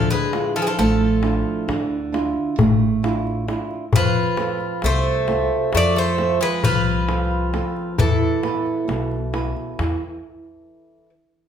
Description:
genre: greek folk, Greek bouzouki band.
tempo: 133 BPM (eighths).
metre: 9/8.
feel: straight.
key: unclear.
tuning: A4 = 440 Hz.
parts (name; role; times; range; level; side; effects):
Greek bouzouki; melody; 0.0-11.1 s; G#4 to D5; -24 LUFS; right 2 dB; none.
Greek bouzouki; second line; 0.0-11.1 s; E3 to A3; -25 LUFS; left 3 dB; none.
flamenco guitar; accompaniment; 0.0-10.0 s; B2 to B4; -23 LUFS; right 4 dB; none.
upright bass; bass; 0.0-9.9 s; A1 to F2; -25 LUFS; equal; none.
darbuka; percussion; 0.3-10.0 s; none; -24 LUFS; left 5 dB; none.
room: wet large studio reverb, RT60 1.1 s.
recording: band playing live in one room.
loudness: -18 LUFS.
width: side -8 dB against mid.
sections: 0.0-11.5 A section.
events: stop 10.0-11.5.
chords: 0.0 Dmadd9; 3.9 F; 8.0 E5.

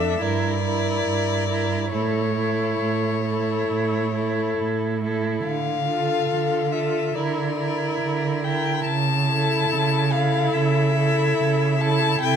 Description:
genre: classical, slow romantic movement for string quartet.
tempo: 70 BPM.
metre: 4/4.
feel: rubato.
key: unclear.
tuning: A4 = 442 Hz.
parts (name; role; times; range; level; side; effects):
rich violin; melody; 0.0-12.4 s; C#5 to A5; -26 LUFS; left 9 dB; none.
clear violin; second line; 0.0-12.4 s; A4 to Bb4; -27 LUFS; left 3 dB; none.
rich viola; accompaniment; 0.0-12.4 s; D4 to F4; -27 LUFS; right 4 dB; none.
rich cello; bass; 0.0-12.4 s; G2 to D3; -24 LUFS; right 5 dB; none.
room: moderate concert hall reverb, RT60 2.0 s.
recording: none.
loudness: -20 LUFS.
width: side -8 dB against mid.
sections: 0.0-12.4 A section.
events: none.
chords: 0.2 Em7b5/G; 1.9 A; 5.5 Dm; 7.1 Gm6/D; 8.9 A/C#.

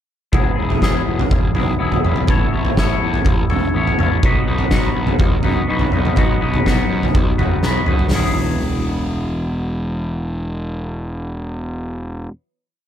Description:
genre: quiet-loud alternative rock.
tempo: 123 BPM.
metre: 4/4.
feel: straight.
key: E major.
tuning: A4 = 440 Hz.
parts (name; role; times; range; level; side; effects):
twangy electric guitar; arpeggios; 0.3-12.3 s; B2 to C#5; -23 LUFS; left 4 dB; phaser.
fuzz picked electric bass; bass; 0.3-12.3 s; E1 to F#2; -22 LUFS; equal; overdrive.
oversized low-tuned drum kit; drums; 0.3-8.2 s; hi-hat, kick drum, snare drum, toms; -17 LUFS; equal; none.
room: light reverb.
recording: none.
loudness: -16 LUFS.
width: side -10 dB against mid.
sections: 0.3-8.1 verse; 8.1-12.0 final chord.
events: drum fill 7.6-8.1.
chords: 0.3 Eadd9; 2.3 Aadd9; 4.2 B; 8.1 Eadd9.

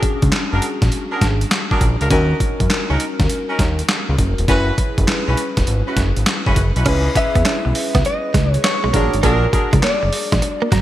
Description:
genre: R&B, new jack swing.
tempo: 101 BPM.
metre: 4/4.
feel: swing 67% on 16ths.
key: C# dorian.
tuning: A4 = 441 Hz.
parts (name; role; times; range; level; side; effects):
FM electric piano with soft pad layer; accompaniment; 0.0-10.8 s; C#4 to A#5; -24 LUFS; left 1 dB; chorus.
boom bap sampler-style drum kit; drums; 0.0-10.8 s; crash cymbal, handclaps, hi-hat, kick drum, snare drum; -19 LUFS; equal; overdrive, gated reverb.
fat analog bass; bass; 0.2-10.8 s; E1 to F#2; -18 LUFS; equal; none.
mellow horn section; stabs; 0.5-9.8 s; C#4 to B4; -24 LUFS; right 1 dB; digital delay.
direct-recorded clean electric guitar; riff; 6.9-10.8 s; F#3 to C#4; -24 LUFS; right 5 dB; analog chorus.
direct-recorded clean electric guitar; melody; 7.2-10.7 s; A#4 to E5; -21 LUFS; equal; lush chorus.
room: light reverb.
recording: bright 1980s-style digital production.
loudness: -15 LUFS.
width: side -13 dB against mid.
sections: 0.0-6.9 A section; 6.9-10.8 B section.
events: FM electric piano fill 10.4-10.8.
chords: 0.0 A#7alt; 2.1 D#m7; 4.5 F#7sus4; 6.9 C#m9; 8.9 A#7b13.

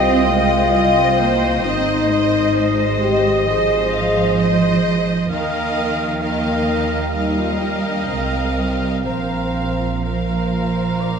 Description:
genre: cinematic, emotional film score for orchestra.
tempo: 60-67 BPM.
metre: 4/4.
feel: rubato.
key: unclear.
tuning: A4 = 439 Hz.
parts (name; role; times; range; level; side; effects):
rich symphonic violin section; melody; 0.0-11.2 s; C5 to F5; -28 LUFS; left 2 dB; none.
mellow clarinet; second line; 0.0-11.2 s; Bb4 to C5; -28 LUFS; equal; none.
mellow cor anglais; second line; 0.0-11.2 s; Bb4 to F5; -28 LUFS; right 3 dB; none.
mellow flute section; second line; 0.0-11.2 s; Eb5 to Bb5; -28 LUFS; equal; none.
warm symphonic violin section; second line; 0.0-11.2 s; C5 to Eb5; -28 LUFS; left 2 dB; none.
rich symphonic viola section; accompaniment; 0.0-11.2 s; Bb4 to Eb5; -27 LUFS; right 2 dB; none.
dark French horn section; sustained chords; 0.0-11.2 s; Bb3 to Ab4; -22 LUFS; left 3 dB; none.
concert harp; arpeggios; 0.0-11.2 s; Ab2 to C6; -26 LUFS; left 7 dB; none.
rich symphonic cello section; bass; 0.0-11.2 s; Eb3 to C4; -22 LUFS; right 4 dB; none.
rich symphonic double bass section; bass; 0.0-11.2 s; Ab1 to Eb2; -24 LUFS; right 4 dB; none.
room: wet scoring stage reverb, RT60 1.8 s.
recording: none.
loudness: -16 LUFS.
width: side -6 dB against mid.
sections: 0.0-11.2 A section.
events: none.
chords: 0.0 Cm; 1.6 Ab; 5.3 Ebadd9; 9.1 Bbsus2.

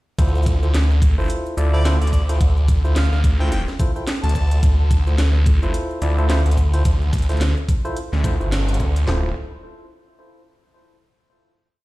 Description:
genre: glitch hop.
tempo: 108 BPM.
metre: 4/4.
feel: swing 59% on 16ths.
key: D minor.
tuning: A4 = 439 Hz.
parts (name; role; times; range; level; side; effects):
bright tine electric piano; stabs; 0.2-9.3 s; E4 to D5; -29 LUFS; equal; sidechain pumping, tape echo.
phased detuned saw bass; bass; 0.2-9.3 s; D1 to D2; -17 LUFS; equal; phaser.
drum and bass drum kit; drums; 0.2-9.2 s; handclaps, kick drum, snare drum, toms; -18 LUFS; equal; none.
drum and bass drum kit; drums; 0.2-9.1 s; hi-hat, rim click, shaker, snare drum; -29 LUFS; equal; none.
bright harmonica; melody; 1.7-4.6 s; D5 to A5; -33 LUFS; left 1 dB; vintage 12-bit sampler grit, tape echo.
room: little or no reverb.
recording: played on a big sound system in a bare room, stone room reverb.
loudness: -16 LUFS.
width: side -19 dB against mid.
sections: 0.2-9.1 drop; 9.1-11.3 final chord.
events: drop 0.2-9.1; band accent 8.5.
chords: 0.2 Dm7.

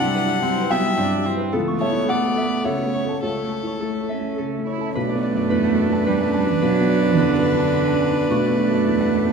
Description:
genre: neoclassical piano and strings.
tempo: 108 BPM.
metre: 3/4.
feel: rubato.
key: B minor.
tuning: A4 = 440 Hz.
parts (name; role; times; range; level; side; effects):
rich violin; melody; 0.0-9.3 s; A4 to F#5; -25 LUFS; left 3 dB; none.
dark cello; second line; 0.0-9.3 s; D3 to E4; -23 LUFS; right 5 dB; none.
felt-muted upright piano; accompaniment; 0.0-9.3 s; B1 to A5; -23 LUFS; left 2 dB; none.
warm viola; accompaniment; 0.0-9.3 s; A3 to D4; -25 LUFS; right 6 dB; none.
concert harp; arpeggios; 0.0-9.3 s; C4 to C#6; -29 LUFS; equal; none.
room: wet recital hall reverb, RT60 1.6 s.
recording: minimal, uncompressed stereo recording.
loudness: -18 LUFS.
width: side -5 dB against mid.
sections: 0.0-5.0 A section; 5.0-9.3 B section.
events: none.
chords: 0.0 Cmaj7; 1.5 A/C#; 5.0 Bm7.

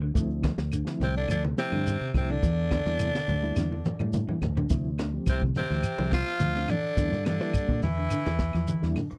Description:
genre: afrobeat.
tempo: 106 BPM.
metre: 4/4.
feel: straight.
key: D minor.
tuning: A4 = 440 Hz.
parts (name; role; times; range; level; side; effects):
semi-hollow electric guitar; arpeggios; 0.0-9.1 s; C3 to G3; -36 LUFS; equal; analog chorus.
fingered electric bass; bass; 0.0-9.2 s; C2 to E3; -32 LUFS; equal; none.
mellow reed electric piano; accompaniment; 0.1-9.0 s; F3 to G4; -36 LUFS; equal; fast tremolo.
jazz brush drum kit; drums; 0.2-9.2 s; hi-hat, kick drum, snare drum, toms; -32 LUFS; equal; none.
shekere; percussion; 0.2-9.1 s; none; -36 LUFS; equal; none.
claves; percussion; 0.4-9.1 s; none; -48 LUFS; equal; none.
congas; percussion; 0.4-9.1 s; none; -36 LUFS; equal; none.
growling tenor saxophone; melody; 1.0-8.9 s; C4 to F4; -34 LUFS; equal; none.
raspy tenor saxophone; second line; 1.0-8.9 s; C3 to F3; -40 LUFS; equal; none.
room: little or no reverb.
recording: dry, close 1970s-style studio recording.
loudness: -28 LUFS.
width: mono.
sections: 0.0-4.7 A section; 4.7-9.2 B section.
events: drum fill 3.6-4.7.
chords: 0.2 Dm7; 2.4 Em7b5; 4.7 Dm7; 7.0 Em7b5.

